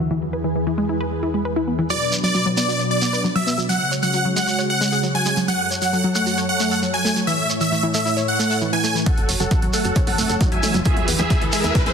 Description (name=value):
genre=uplifting trance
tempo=134 BPM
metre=4/4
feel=straight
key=F# minor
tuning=A4 = 439 Hz
part: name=analog string pad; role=sustained chords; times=0.0-11.9 s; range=E2 to C#5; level=-25 LUFS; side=equal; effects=ensemble chorus, sidechain pumping
part: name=wide unison pluck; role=arpeggios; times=0.0-11.8 s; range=E3 to D5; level=-23 LUFS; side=equal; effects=cassette tape, sidechain pumping, digital delay
part: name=big supersaw lead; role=melody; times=1.9-11.9 s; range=G#4 to G#5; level=-22 LUFS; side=equal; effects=phaser, sidechain pumping, low-pass filter, ping-pong delay
part: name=shekere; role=percussion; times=1.9-11.8 s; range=none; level=-27 LUFS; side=right 2 dB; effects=none
part: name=electronic kick drum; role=drums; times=9.1-11.8 s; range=none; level=-20 LUFS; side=equal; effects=none
part: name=punchy analog drum machine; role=drums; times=9.1-11.9 s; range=hi-hat, toms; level=-26 LUFS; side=equal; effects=none
part: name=riser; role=sound effects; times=10.0-11.9 s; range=none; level=-29 LUFS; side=right 1 dB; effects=none
part: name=tight sequencer bass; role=bass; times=9.2-11.9 s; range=E1 to E2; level=-27 LUFS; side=equal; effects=sidechain pumping
room=moderate lush hall reverb, RT60 1.9 s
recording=dense, heavily limited modern master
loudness=-17 LUFS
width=side -6 dB against mid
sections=0.0-9.1 A section; 9.1-11.9 B section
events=filter sweep on synth arpeggio sound 0.0-9.1; filter sweep on analog synth pad 0.0-9.1; build-up 9.1-11.9; filter sweep on supersaw synth 9.1-11.9; riser 10.0-11.9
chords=0.1 E; 1.9 Bm; 3.7 C#sus4; 5.5 F#m; 7.3 A; 9.1 F#m; 10.9 E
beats=| 0.11 0.56 1.00 1.45 | 1.90 2.35 2.80 3.24 | 3.69 4.14 4.59 5.04 | 5.48 5.93 6.38 6.83 | 7.27 7.72 8.17 8.62 | 9.06 9.51 9.96 10.41 | 10.86 11.30 11.75